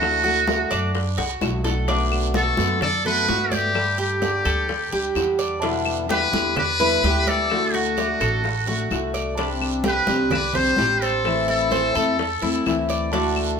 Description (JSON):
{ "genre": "latin, Cuban son and guajira", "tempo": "128 BPM", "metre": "4/4", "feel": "straight", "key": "unclear", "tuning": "A4 = 441 Hz", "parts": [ { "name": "trumpet with metal mute", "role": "melody", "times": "0.0-12.9 s", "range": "F#4 to C5", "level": "-22 LUFS", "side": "left 1 dB", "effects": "none" }, { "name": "fingerpicked steel-string acoustic guitar", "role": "accompaniment", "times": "0.0-13.6 s", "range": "B2 to G4", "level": "-26 LUFS", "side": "left 3 dB", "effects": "none" }, { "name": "Cuban tres", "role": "arpeggios", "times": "0.0-13.6 s", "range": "D4 to D5", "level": "-26 LUFS", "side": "right 4 dB", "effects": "none" }, { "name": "upright bass", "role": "bass", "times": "0.0-13.6 s", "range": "A1 to G2", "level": "-28 LUFS", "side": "equal", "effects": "none" }, { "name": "bongos", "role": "percussion", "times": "0.0-13.6 s", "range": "none", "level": "-32 LUFS", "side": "left 7 dB", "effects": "none" }, { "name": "claves", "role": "percussion", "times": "0.0-13.6 s", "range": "none", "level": "-32 LUFS", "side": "left 7 dB", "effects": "none" }, { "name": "congas", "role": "percussion", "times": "0.0-13.6 s", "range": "none", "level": "-30 LUFS", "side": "right 2 dB", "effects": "none" }, { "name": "guiro", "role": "percussion", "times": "0.0-13.6 s", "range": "none", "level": "-34 LUFS", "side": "right 7 dB", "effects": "none" } ], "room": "moderate studio reverb, RT60 0.8 s", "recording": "minimal, uncompressed stereo recording", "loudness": "-19 LUFS", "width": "side -6 dB against mid", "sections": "0.0-1.9 A section; 1.9-13.6 B section", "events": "drum fill 1.2-1.9", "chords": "0.0 D; 1.9 Bm7; 3.8 Gsus2; 5.6 Em7; 7.5 D; 9.4 Csus2; 11.3 Am" }